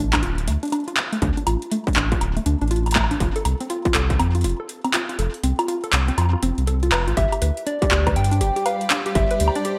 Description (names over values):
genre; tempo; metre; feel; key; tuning
IDM; 121 BPM; 4/4; swing 62% on 16ths; unclear; A4 = 440 Hz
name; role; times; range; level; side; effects
warbly dusty pluck; arpeggios; 0.0-9.7 s; A3 to B4; -28 LUFS; equal; chorus, delay
round analog bass; bass; 0.0-9.5 s; D1 to G2; -23 LUFS; equal; none
electro analog drum machine; drums; 0.1-9.8 s; handclaps, hi-hat, woodblock; -26 LUFS; equal; gated reverb
electronic kick drum; drums; 0.1-4.2, 7.2-9.3 s; none; -26 LUFS; equal; distortion, overdrive
soft struck synth lead; melody; 7.2-9.8 s; D5 to G5; -27 LUFS; equal; chorus, digital delay
granular cloud pad; sustained chords; 8.3-9.8 s; G3 to D5; -32 LUFS; equal; built-in reverb
room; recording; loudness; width
moderate plate reverb, RT60 1.5 s; bright 1980s-style digital production; -21 LUFS; mono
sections
0.0-7.2 A section; 7.2-9.8 B section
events
kick drops out 5.2-7.2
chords
0.0 D5; 3.2 F5; 7.2 Gsus4